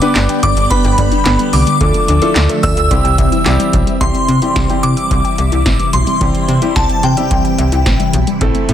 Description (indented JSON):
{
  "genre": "synth-pop",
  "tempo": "109 BPM",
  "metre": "4/4",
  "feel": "straight",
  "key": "unclear",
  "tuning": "A4 = 440 Hz",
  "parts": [
    { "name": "shimmering bell with halo", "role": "melody", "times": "0.0-8.1 s", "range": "G5 to E6", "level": "-18 LUFS", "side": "left 1 dB", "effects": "ensemble chorus, digital delay" },
    { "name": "clear baby grand piano", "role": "accompaniment", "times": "0.0-8.7 s", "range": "G3 to D5", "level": "-19 LUFS", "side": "right 2 dB", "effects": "none" },
    { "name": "phased string machine", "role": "sustained chords", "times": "0.0-8.7 s", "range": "C3 to E5", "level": "-20 LUFS", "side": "equal", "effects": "ensemble chorus, phaser" },
    { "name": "soft round pluck", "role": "arpeggios", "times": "0.0-8.7 s", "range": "D3 to E6", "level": "-22 LUFS", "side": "left 5 dB", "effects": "chorus, digital delay" },
    { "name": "electro analog drum machine", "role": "drums", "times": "0.0-8.7 s", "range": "handclaps, hi-hat, kick drum, snare drum", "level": "-17 LUFS", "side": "equal", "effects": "none" },
    { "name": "slap-like FM bass", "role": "bass", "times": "0.2-8.7 s", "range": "G1 to C3", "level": "-15 LUFS", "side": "equal", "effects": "none" }
  ],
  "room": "light reverb",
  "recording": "dense, heavily limited modern master",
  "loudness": "-11 LUFS",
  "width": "side -10 dB against mid",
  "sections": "0.0-4.0 A section; 4.0-8.7 B section",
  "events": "none",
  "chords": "0.0 G; 1.8 Dmadd9; 2.9 C"
}